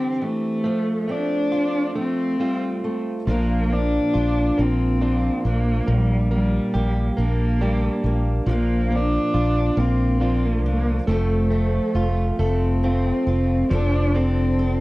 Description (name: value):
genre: acoustic folk-pop ballad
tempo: 46 BPM (dotted quarters)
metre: 6/8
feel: straight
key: Bb major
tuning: A4 = 441 Hz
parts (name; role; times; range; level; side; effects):
- warm cello; melody; 0.0-14.8 s; G3 to D4; -23 LUFS; left 1 dB; cassette tape
- fingerpicked steel-string acoustic guitar; accompaniment; 0.0-14.8 s; Bb2 to Bb4; -28 LUFS; equal; none
- direct-recorded clean electric guitar; arpeggios; 0.0-14.8 s; E3 to A4; -28 LUFS; right 2 dB; harmonic tremolo
- mellow fretless electric bass; bass; 3.3-14.8 s; F1 to C2; -21 LUFS; equal; none
room: small room reverb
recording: home recording on cassette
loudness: -19 LUFS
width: side -20 dB against mid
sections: 0.0-13.7 A section; 13.7-14.8 B section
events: none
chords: 0.0 C; 0.6 F; 3.3 Bb; 5.9 Gm/Bb; 8.5 Bb; 11.1 F